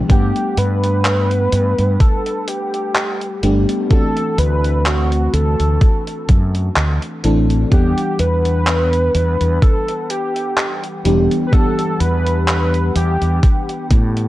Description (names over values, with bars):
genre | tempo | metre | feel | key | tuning
vaporwave | 63 BPM | 4/4 | swing 55% on 16ths | E minor | A4 = 440 Hz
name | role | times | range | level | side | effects
FM electric piano with soft pad layer | accompaniment | 0.0-14.3 s | E3 to F#5 | -21 LUFS | left 1 dB | lush chorus, tape echo
warm velvety synth lead | melody | 0.1-13.9 s | F#4 to B4 | -21 LUFS | equal | chorus, tape echo
fretless electric bass | bass | 0.1-14.3 s | E1 to A2 | -16 LUFS | equal | none
electronic kick drum | drums | 0.1-14.1 s | none | -13 LUFS | equal | overdrive
gated 80s digital drum machine | drums | 0.1-14.3 s | handclaps, hi-hat | -22 LUFS | equal | gated reverb
room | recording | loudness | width
little or no reverb | dark, warm production, cassette tape | -14 LUFS | side -16 dB against mid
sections
0.0-14.3 A section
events
none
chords
0.1 Gmaj7; 3.9 D7; 7.7 Em9